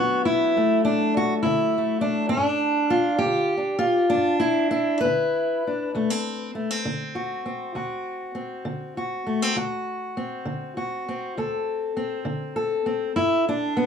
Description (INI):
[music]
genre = acoustic country blues, solo or duo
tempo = 67 BPM (dotted quarters)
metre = 12/8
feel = straight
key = D mixolydian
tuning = A4 = 440 Hz
[part]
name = fingerpicked steel-string acoustic guitar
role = solo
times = 0.0-13.9 s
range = D2 to B4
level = -22 LUFS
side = left 1 dB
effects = none
[sound]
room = moderate booth ambience, RT60 0.2 s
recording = small room ambience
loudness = -22 LUFS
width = side -7 dB against mid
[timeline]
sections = 0.0-13.9 A section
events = none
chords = 0.0 D; 2.4 G7; 5.9 D7; 13.1 G